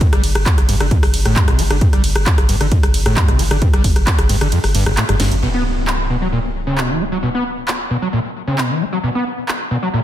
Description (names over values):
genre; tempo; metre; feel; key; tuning
driving peak-time techno; 133 BPM; 4/4; straight; unclear; A4 = 440 Hz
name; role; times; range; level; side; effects
screaming distorted acid line; riff; 0.0-10.0 s; G1 to B3; -19 LUFS; equal; distortion, analog chorus, sidechain pumping, ping-pong delay
electronic kick drum; drums; 0.0-4.2 s; none; -14 LUFS; equal; none
techno drum kit; drums; 0.0-9.6 s; handclaps, hi-hat, ride cymbal, rim click, snare drum; -20 LUFS; equal; none
saturated sub bass; bass; 0.1-5.4 s; G1; -19 LUFS; equal; sidechain pumping, low-pass filter
impact; sound effects; 5.4-7.2 s; none; -23 LUFS; equal; none
room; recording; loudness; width
light reverb; dense, heavily limited modern master; -14 LUFS; side -12 dB against mid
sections
0.0-5.4 A section; 5.4-10.0 B section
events
drop 0.0-5.4; kick drops out 4.5-5.4; drum fill 5.2; impact 5.4-7.2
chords
0.0 G5; 5.4 B5